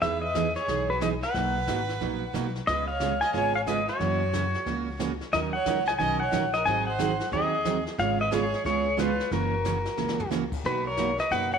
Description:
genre	country, western swing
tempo	180 BPM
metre	4/4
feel	swing 64% on 8ths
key	B major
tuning	A4 = 445 Hz
part	pedal steel guitar	melody	0.0-11.6 s	A#4 to G#5	-27 LUFS	left 2 dB	tape echo
part	clear fiddle	second line	0.0-11.6 s	E#4 to D#5	-34 LUFS	right 8 dB	none
part	picked steel-string acoustic guitar	accompaniment	0.0-11.5 s	B2 to A#4	-30 LUFS	right 9 dB	none
part	upright bass	bass	0.0-11.6 s	F#1 to F#2	-34 LUFS	left 2 dB	none
part	jazz brush drum kit	drums	0.0-11.6 s	brushed snare drum, crash cymbal, hi-hat, kick drum, snare drum, toms	-38 LUFS	left 3 dB	none
room	moderate echo chamber reverb, RT60 1.6 s, studio reverb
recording	1960s-style stereo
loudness	-24 LUFS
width	side -7 dB against mid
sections	0.0-10.7 A section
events	drum fill 10.0-10.3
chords	0.0 Emaj7; 1.3 Bmaj7; 2.7 C#7; 4.0 F#7; 5.3 D#m7; 6.7 G#7; 8.0 C#7/G#; 9.3 F#7; 10.7 Bmaj7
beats	| 0.03 0.36 0.69 1.02 | 1.35 1.68 2.01 2.34 | 2.67 3.00 3.34 3.67 | 4.00 4.33 4.66 5.00 | 5.33 5.66 5.99 6.33 | 6.66 6.99 7.32 7.66 | 7.99 8.32 8.65 8.99 | 9.32 9.65 9.98 10.32 | 10.65 10.98 11.32

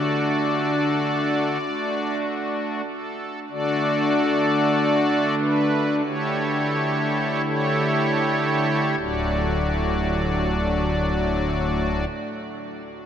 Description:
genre	classical, chorale-style piece for pipe organ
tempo	38-52 BPM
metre	4/4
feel	straight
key	D major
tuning	A4 = 440 Hz
part	pipe organ, strings celeste	solo	0.0-12.0 s	D1 to D5	-20 LUFS	equal	none
room	wet huge ambient reverb, RT60 7.9 s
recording	in a vast, echoing space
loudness	-20 LUFS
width	side -9 dB against mid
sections	0.0-3.5 A section; 3.5-9.0 B section; 9.0-13.1 C section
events	slowing down 0.0-9.0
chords	0.0 D; 6.1 A7/D; 9.0 D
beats	1.03 2.22 | 3.49 4.75 6.06 7.46 | 8.99 10.55

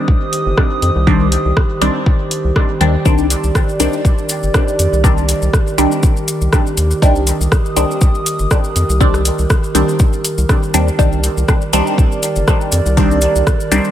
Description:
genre	dub techno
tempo	121 BPM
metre	4/4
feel	swing 54% on 16ths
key	C minor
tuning	A4 = 441 Hz
part	dark analog pad	sustained chords	0.0-13.9 s	Eb3 to Eb6	-20 LUFS	right 2 dB	wide subtle chorus, sidechain pumping
part	filtered dub chord stab	stabs	0.0-13.9 s	Eb3 to D4	-18 LUFS	left 1 dB	phaser, sidechain pumping, dub echo
part	round analog bass	bass	0.1-13.8 s	G1 to F2	-16 LUFS	equal	sidechain pumping
part	electronic kick drum	drums	0.1-13.6 s	none	-13 LUFS	equal	none
part	deep house drum kit	drums	0.3-13.8 s	hi-hat, rim click	-21 LUFS	equal	none
part	maracas	percussion	3.1-13.9 s	none	-24 LUFS	left 4 dB	none
room	light reverb, digital ambience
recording	none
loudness	-12 LUFS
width	side -11 dB against mid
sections	0.0-13.9 A section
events	none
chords	0.0 Cmadd9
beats	0.08 0.58 | 1.07 1.57 2.06 2.56 | 3.06 3.55 4.05 4.54 | 5.04 5.53 6.03 6.53 | 7.02 7.52 8.01 8.51 | 9.01 9.50 10.00 10.49 | 10.99 11.48 11.98 12.48 | 12.97 13.47

